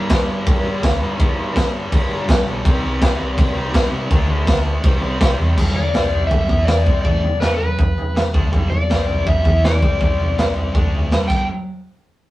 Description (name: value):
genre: garage rock duo or trio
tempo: 164 BPM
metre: 4/4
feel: straight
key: G major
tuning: A4 = 435 Hz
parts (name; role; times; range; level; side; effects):
- thick fuzz guitar; riff; 0.0-11.5 s; G2 to E4; -24 LUFS; equal; distortion
- hollow-body short-scale picked electric bass; bass; 0.0-11.5 s; G1 to C3; -23 LUFS; equal; overdrive
- raw garage drum kit; drums; 0.1-11.4 s; crash cymbal, kick drum, snare drum, toms; -17 LUFS; equal; none
- overdriven slide guitar; melody; 5.8-11.5 s; B4 to G5; -22 LUFS; left 2 dB; slapback echo
room: moderate studio reverb, RT60 0.6 s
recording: rough rehearsal-room recording, small room ambience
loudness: -15 LUFS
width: side -17 dB against mid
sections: 0.0-5.6 A section; 5.6-11.5 B section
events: none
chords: 0.0 G5; 2.6 C5; 4.1 D5; 4.8 C; 5.6 G5; 5.9 C5; 6.3 G5; 6.5 E5; 6.9 G; 8.9 C5; 9.3 G5; 9.4 E5; 9.8 C5; 10.7 D5; 11.1 G5; 11.5 N.C.